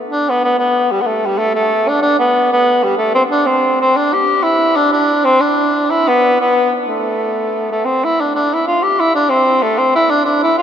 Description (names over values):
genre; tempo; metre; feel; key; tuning
celtic folk; 124 BPM (dotted quarters); 6/8; straight; A minor; A4 = 440 Hz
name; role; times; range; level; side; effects
mellow tenor saxophone; solo; 0.1-10.6 s; G3 to G4; -12 LUFS; equal; none
room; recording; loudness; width
wet cathedral reverb, RT60 5.8 s; recorded in a church or concert hall; -12 LUFS; side -8 dB against mid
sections
0.1-7.9 A section; 7.9-10.6 B section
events
none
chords
none